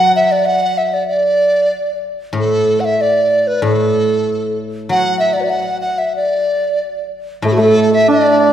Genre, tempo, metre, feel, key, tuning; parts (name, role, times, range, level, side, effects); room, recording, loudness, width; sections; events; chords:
chinese traditional, Chinese chamber ensemble; 95 BPM; 2/4; straight; D gong mode; A4 = 436 Hz
mellow hollow large dizi; melody; 0.0-8.5 s; F#4 to F#5; -13 LUFS; right 1 dB
guzheng; accompaniment; 0.0-8.5 s; A2 to F#3; -21 LUFS; left 2 dB
hammered dulcimer; second line; 7.4-8.5 s; A3 to D4; -13 LUFS; right 1 dB
wet scoring stage reverb, RT60 1.9 s; heard from further back in the room, faint mains hum; -12 LUFS; side -10 dB against mid
0.0-7.4 A section; 7.4-8.5 B section